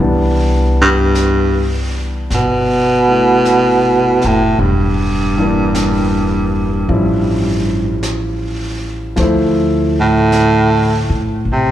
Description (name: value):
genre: jazz ballad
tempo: 52 BPM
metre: 4/4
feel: swing 68% on 8ths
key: C major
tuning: A4 = 440 Hz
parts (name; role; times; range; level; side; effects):
- warm grand piano; accompaniment; 0.0-11.7 s; E3 to C5; -18 LUFS; left 1 dB; none
- upright bass; bass; 0.0-11.7 s; E1 to A2; -19 LUFS; equal; none
- breathy baritone saxophone; melody; 0.8-11.7 s; G2 to C3; -13 LUFS; right 1 dB; none
- jazz brush drum kit; drums; 1.1-11.7 s; brushed snare drum, hi-hat, snare drum; -29 LUFS; equal; none
room: light reverb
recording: live gig heard through the venue's PA, club reverb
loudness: -12 LUFS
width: side -12 dB against mid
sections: 0.0-11.7 A section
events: none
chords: 0.0 Cmaj9; 4.6 Em7b5; 6.9 A7b13; 9.2 Dm9